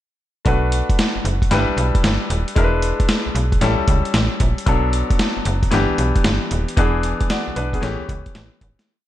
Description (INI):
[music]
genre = R&B, new jack swing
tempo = 114 BPM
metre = 4/4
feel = swing 66% on 16ths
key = B minor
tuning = A4 = 442 Hz
[part]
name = bright concert grand piano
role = accompaniment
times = 0.4-8.9 s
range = E3 to D5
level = -22 LUFS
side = left 3 dB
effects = none
[part]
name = slap-like FM bass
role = bass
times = 0.5-8.8 s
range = D#1 to C#2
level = -21 LUFS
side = equal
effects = none
[part]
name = boom bap sampler-style drum kit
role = drums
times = 0.5-8.9 s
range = hi-hat, kick drum, snare drum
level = -20 LUFS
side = equal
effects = vintage 12-bit sampler grit, gated reverb
[sound]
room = digital ambience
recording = none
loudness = -16 LUFS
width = side -13 dB against mid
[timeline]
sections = 0.5-8.9 verse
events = fade-out 6.8-8.9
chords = 0.5 Bm7; 1.5 G6; 2.6 E7; 3.6 A7; 4.7 Bm7; 5.7 G6; 6.8 E7; 7.8 A7